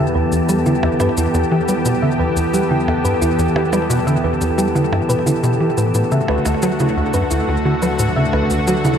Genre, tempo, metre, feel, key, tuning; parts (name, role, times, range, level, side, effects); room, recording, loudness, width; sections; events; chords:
ambient, sequencer-driven space music; 88 BPM; 4/4; straight; E minor; A4 = 440 Hz
lush unison pad; sustained chords; 0.0-9.0 s; D3 to G4; -19 LUFS; equal; chorus
thumb-piano-like synth pluck; arpeggios; 0.0-8.9 s; E4 to E5; -23 LUFS; right 1 dB; chorus, auto-pan, ping-pong delay
tight sequencer bass; riff; 0.0-8.9 s; D2 to G3; -19 LUFS; equal; analog chorus, ping-pong delay
analog drone; bass; 0.0-9.0 s; D2 to E2; -28 LUFS; equal; chorus
wind-like tuned noise texture; texture; 0.0-9.0 s; A4 to A5; -26 LUFS; equal; built-in reverb
cabasa and percussion blips; percussion; 0.3-9.0 s; -28 LUFS; right 1 dB; ping-pong delay
wet lush hall reverb, RT60 2.8 s; -15 LUFS; side -8 dB against mid
0.0-9.0 A section
0.0 Em; 5.9 D